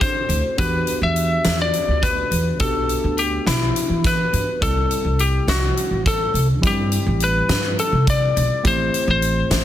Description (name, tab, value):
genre	progressive instrumental, band music in an uneven meter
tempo	208 BPM (eighths)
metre	7/8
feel	straight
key	unclear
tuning	A4 = 444 Hz
part	lightly driven lead guitar	melody	0.0-9.6 s	E4 to E5	-21 LUFS	left 3 dB	plate reverb, ping-pong delay
part	barky tine electric piano	accompaniment	0.0-9.6 s	G3 to A4	-28 LUFS	right 1 dB	plate reverb
part	upright bass	bass	0.0-9.6 s	A1 to E3	-21 LUFS	right 1 dB	none
part	huge arena drum kit	drums	0.0-9.6 s	hi-hat, kick drum, snare drum	-24 LUFS	equal	none
room	light reverb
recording	dense, heavily limited modern master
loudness	-17 LUFS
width	side -11 dB against mid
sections	0.0-9.6 A section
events	none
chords	0.0 D7; 0.6 Em7; 4.6 C; 8.7 Am7